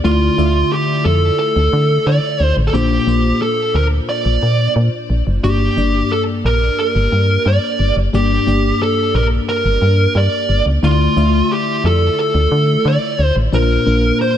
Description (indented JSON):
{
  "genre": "1980s-style pop",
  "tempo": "89 BPM",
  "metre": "4/4",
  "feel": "straight",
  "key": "D minor",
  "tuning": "A4 = 440 Hz",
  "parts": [
    { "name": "fuzz lead guitar", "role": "melody", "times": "0.0-14.4 s", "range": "F4 to D5", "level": "-17 LUFS", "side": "right 1 dB", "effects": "distortion" },
    { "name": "FM electric piano with soft pad layer", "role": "accompaniment", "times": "0.0-14.4 s", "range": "G2 to E5", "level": "-19 LUFS", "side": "left 3 dB", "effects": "chorus" },
    { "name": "solid FM bass", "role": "bass", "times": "0.0-14.1 s", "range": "F#1 to D3", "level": "-15 LUFS", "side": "equal", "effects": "none" }
  ],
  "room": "light reverb",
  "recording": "none",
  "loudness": "-13 LUFS",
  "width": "side -10 dB against mid",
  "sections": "0.0-14.4 A section",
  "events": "none",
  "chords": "0.0 Dmadd9; 2.7 Bbadd9; 5.4 Gm; 10.8 Dmadd9; 13.5 Bbadd9",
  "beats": "| 0.04 0.72 1.39 2.07 | 2.74 3.42 4.09 4.76 | 5.44 6.11 6.79 7.46 | 8.13 8.81 9.48 10.16 | 10.83 11.51 12.18 12.85 | 13.53 14.20"
}